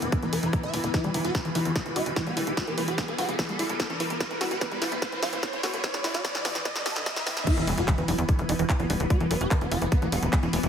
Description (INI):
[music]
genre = psychedelic trance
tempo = 147 BPM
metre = 4/4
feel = straight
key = E minor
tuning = A4 = 443 Hz
[part]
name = swarming rave lead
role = melody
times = 0.0-10.7 s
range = E3 to E5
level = -33 LUFS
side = equal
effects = chorus, phaser, sidechain pumping, ping-pong delay
[part]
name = pulsing gated texture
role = sustained chords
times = 0.0-10.7 s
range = E3 to B3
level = -35 LUFS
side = left 1 dB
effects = chorus, built-in reverb, vintage 12-bit sampler grit, sidechain pumping
[part]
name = tight sequencer bass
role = bass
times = 0.0-10.7 s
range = D1 to E2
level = -32 LUFS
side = equal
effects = none
[part]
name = big-room dance drum kit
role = drums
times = 0.0-10.7 s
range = crash cymbal, handclaps, hi-hat, snare drum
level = -32 LUFS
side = equal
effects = studio reverb
[part]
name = riser and impact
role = sound effects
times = 0.0-9.1 s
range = none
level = -35 LUFS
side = equal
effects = none
[part]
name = granular cloud pad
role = texture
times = 0.0-10.7 s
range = E4 to B5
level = -37 LUFS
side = left 1 dB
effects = built-in reverb, sidechain pumping
[part]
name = electronic kick drum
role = drums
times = 0.1-10.4 s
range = none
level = -25 LUFS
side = equal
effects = studio reverb
[part]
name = woody wave-folded pluck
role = riff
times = 0.2-10.6 s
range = D3 to F#4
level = -32 LUFS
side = right 1 dB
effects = chorus, auto-pan, sidechain pumping, tape echo
[sound]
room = light reverb, digital ambience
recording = heavily compressed radio sound, high-pass filter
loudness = -24 LUFS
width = side -8 dB against mid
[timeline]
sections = 0.0-7.5 A section; 7.5-10.7 B section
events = build-up 0.0-7.5; riser 0.0-7.5; filter sweep on synth arpeggio sound 0.0-7.5; filter sweep 0.0-7.5; drum fill 0.9-7.5; drop 7.5-10.7; impact 7.5-9.1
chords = 0.0 E5